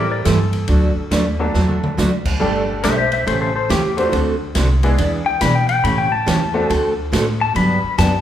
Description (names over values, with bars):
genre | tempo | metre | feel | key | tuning
country, western swing | 140 BPM | 4/4 | swing 65% on 8ths | unclear | A4 = 439 Hz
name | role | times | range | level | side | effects
clean lap steel guitar | second line | 0.0-8.2 s | G4 to B5 | -20 LUFS | left 4 dB | none
bright upright piano | accompaniment | 0.0-6.7 s | F#3 to C5 | -22 LUFS | equal | none
picked steel-string acoustic guitar | accompaniment | 0.0-8.1 s | C#3 to A4 | -20 LUFS | right 2 dB | none
upright bass | bass | 0.0-8.2 s | G1 to B2 | -20 LUFS | equal | none
swinging big-band drum kit | drums | 0.3-8.1 s | crash cymbal, hi-hat, kick drum, ride cymbal, snare drum, toms | -26 LUFS | equal | none
room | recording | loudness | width
wet large studio reverb, RT60 1.2 s | band playing live in one room | -15 LUFS | side -11 dB against mid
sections
0.0-8.2 A section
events
electric slide guitar solo 0.0-8.2; drum fill 1.5-2.0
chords
0.0 Am7; 0.7 D; 2.4 Gsus2; 3.3 A7; 4.1 D7; 5.0 E7; 5.8 A7; 6.7 D7; 7.6 Gmaj7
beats
0.26 | 0.69 1.11 1.54 1.97 | 2.40 2.83 3.26 3.69 | 4.12 4.55 4.98 5.41 | 5.84 6.27 6.70 7.13 | 7.55 7.99